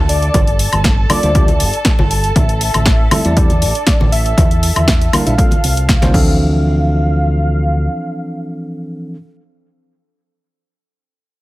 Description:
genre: nu-disco, nu disco.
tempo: 119 BPM.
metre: 4/4.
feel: straight.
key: D minor.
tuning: A4 = 440 Hz.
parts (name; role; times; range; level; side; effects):
muted studio violin section; sustained chords; 0.0-6.1 s; A4 to A5; -24 LUFS; right 1 dB; sidechain pumping.
fingered electric bass with an envelope filter; bass; 0.0-7.9 s; G1 to E2; -16 LUFS; equal; none.
wide unison lead; melody; 0.1-9.1 s; D5 to F5; -22 LUFS; equal; digital delay.
house drum kit; drums; 0.1-6.2 s; crash cymbal, hi-hat, snare drum, woodblock; -19 LUFS; left 1 dB; none.
electronic kick drum; drums; 0.3-6.2 s; none; -14 LUFS; equal; none.
congas; percussion; 0.3-6.1 s; none; -21 LUFS; equal; none.
bell-like tine electric piano; accompaniment; 1.1-9.2 s; E3 to E5; -20 LUFS; equal; sidechain pumping.
room: little or no reverb.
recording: none.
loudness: -11 LUFS.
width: side -18 dB against mid.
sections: 0.0-6.4 A section; 6.4-10.4 B section.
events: drop 0.0-6.4.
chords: 0.3 Gm9; 2.4 Am7; 4.4 Em7b5; 5.4 C7sus4; 6.1 Dm9.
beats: | 0.34 0.85 1.35 1.86 | 2.36 2.86 3.37 3.87 | 4.38 4.88 5.38 5.89 | 6.39 6.90 7.40 7.91 | 8.41 8.91.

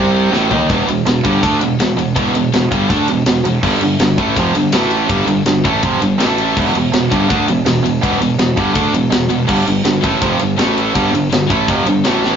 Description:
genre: heavy metal.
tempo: 164 BPM.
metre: 4/4.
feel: straight.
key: E phrygian.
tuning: A4 = 440 Hz.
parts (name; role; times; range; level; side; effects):
scooped high-gain guitar; riff; 0.0-12.4 s; E2 to D#4; -21 LUFS; left 9 dB; distortion.
tight distorted guitar; riff; 0.0-12.4 s; E2 to D#4; -16 LUFS; right 5 dB; distortion.
fuzz fingered electric bass; bass; 0.0-12.4 s; E1 to D#2; -18 LUFS; left 1 dB; overdrive.
tight metal drum kit; drums; 0.3-12.3 s; crash cymbal, kick drum, ride cymbal, snare drum, toms; -18 LUFS; left 2 dB; none.
room: moderate studio ambience, RT60 0.5 s.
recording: rough rehearsal-room recording, nothing above 7.5 kHz.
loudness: -12 LUFS.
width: side -8 dB against mid.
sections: 0.7-12.4 A section.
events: drum fill 0.3-0.7.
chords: 0.3 A5; 0.7 Em; 3.6 G5; 4.7 A5; 5.1 G5; 6.2 A5; 6.6 Em; 9.5 G5; 10.6 A5; 11.0 G5.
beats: 0.33 | 0.70 1.06 1.43 1.79 | 2.16 2.53 2.89 3.26 | 3.63 3.99 4.36 4.73 | 5.09 5.46 5.83 6.19 | 6.56 6.93 7.29 7.66 | 8.03 8.39 8.76 9.12 | 9.49 9.86 10.22 10.59 | 10.95 11.32 11.68 12.05.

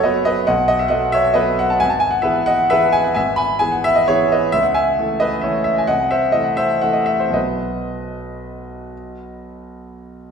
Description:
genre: classical, piano waltz.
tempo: 112-142 BPM.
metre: 3/4.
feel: rubato.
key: unclear.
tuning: A4 = 442 Hz.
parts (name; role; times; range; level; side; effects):
warm concert grand piano; solo; 0.0-10.3 s; F#1 to B5; -16 LUFS; equal; none.
room: wet recital hall reverb, RT60 1.7 s.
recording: recorded in a church or concert hall.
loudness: -15 LUFS.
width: side -6 dB against mid.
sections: 0.0-10.3 A section.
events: none.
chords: 0.0 B7/F#; 1.8 E/G#; 4.5 A/C#; 5.9 Am/C; 7.4 B.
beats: 0.04 | 0.49 0.92 1.38 | 1.82 2.27 2.73 | 3.18 3.63 4.09 | 4.54 4.99 5.45 | 5.91 6.36 6.86 | 7.36 7.88 8.41 | 8.91 9.41 9.93.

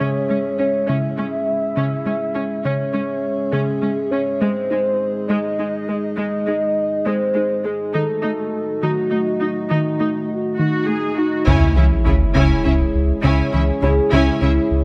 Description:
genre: cinematic, hybrid orchestral and electronic film score.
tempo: 68 BPM (dotted quarters).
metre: 6/8.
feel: straight.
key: C# harmonic minor.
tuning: A4 = 438 Hz.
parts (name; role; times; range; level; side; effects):
soft octave-layered synth lead; melody; 0.0-10.6 s; D#4 to E5; -25 LUFS; equal; chorus, phaser, delay.
rich studio viola section; accompaniment; 0.0-14.5 s; G#3 to G#4; -28 LUFS; equal; none.
dark analog pad; sustained chords; 0.0-14.8 s; G#3 to E5; -27 LUFS; equal; chorus.
soft round pluck; arpeggios; 0.0-14.6 s; C#3 to G#4; -27 LUFS; equal; chorus.
mellow French horn section; sustained chords; 10.3-14.8 s; C#4 to G#4; -25 LUFS; equal; none.
warm symphonic violin section; second line; 11.5-14.5 s; E4 to G#5; -31 LUFS; equal; none.
smooth gliding synth bass; riff; 11.5-14.8 s; C#2; -21 LUFS; equal; none.
rich symphonic cello section; bass; 11.5-14.5 s; C#3; -25 LUFS; equal; none.
taiko ensemble; drums; 11.5-13.1 s; none; -27 LUFS; equal; none.
sub drop; sound effects; 11.5-13.2 s; none; -22 LUFS; equal; none.
room: light reverb.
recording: close, detailed microphones.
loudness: -19 LUFS.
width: mono.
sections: 0.0-11.5 A section; 11.5-14.8 B section.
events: impact 11.5-13.2.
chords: 0.0 C#m; 4.4 G#; 7.9 D#dim; 11.5 C#m.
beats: 0.01 | 0.89 1.77 | 2.65 3.53 | 4.42 5.30 | 6.18 7.06 | 7.95 8.83 | 9.71 10.59 | 11.48 12.36 | 13.24 14.12.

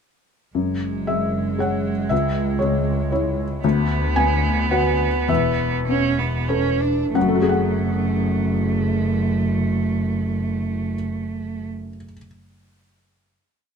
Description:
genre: neoclassical piano and strings.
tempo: 91-119 BPM.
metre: 3/4.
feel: rubato.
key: F# minor.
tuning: A4 = 440 Hz.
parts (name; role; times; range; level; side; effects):
felt-muted upright piano; accompaniment; 0.5-12.2 s; C#2 to G#5; -22 LUFS; left 3 dB; none.
rich cello; second line; 0.6-11.7 s; G#3 to D4; -24 LUFS; right 6 dB; none.
rich double bass; bass; 0.6-11.7 s; E1 to D2; -25 LUFS; equal; none.
room: light reverb.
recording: minimal, uncompressed stereo recording.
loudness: -19 LUFS.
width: side -6 dB against mid.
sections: 0.6-7.2 theme; 7.2-10.9 final chord.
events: slowing down 2.9-7.2.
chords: 0.6 F#sus2; 2.1 C#m; 3.6 Bm/D; 5.3 Esus4; 7.2 F#madd9.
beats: | 0.56 1.08 1.60 | 2.11 2.61 3.12 | 3.63 4.16 4.71 | 5.29 5.88 6.50 | 7.15 7.79 8.41 | 9.04 9.67 10.30.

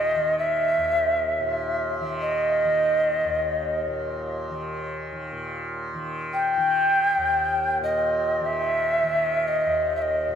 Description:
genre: world meditative, free-time meditation music.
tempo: free time.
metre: none.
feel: none.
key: Eb major.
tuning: A4 = 440 Hz.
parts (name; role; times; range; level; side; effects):
mellow Native American-style cedar flute; melody; 0.0-10.4 s; Eb5 to G5; -22 LUFS; equal; none.
tanpura; drone; 0.0-10.4 s; Eb2 to Eb3; -30 LUFS; equal; none.
room: wet huge ambient reverb, RT60 4.8 s.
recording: none.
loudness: -22 LUFS.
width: side -8 dB against mid.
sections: 0.0-5.3 A section; 5.3-10.4 A section.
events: none.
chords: none.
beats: free time.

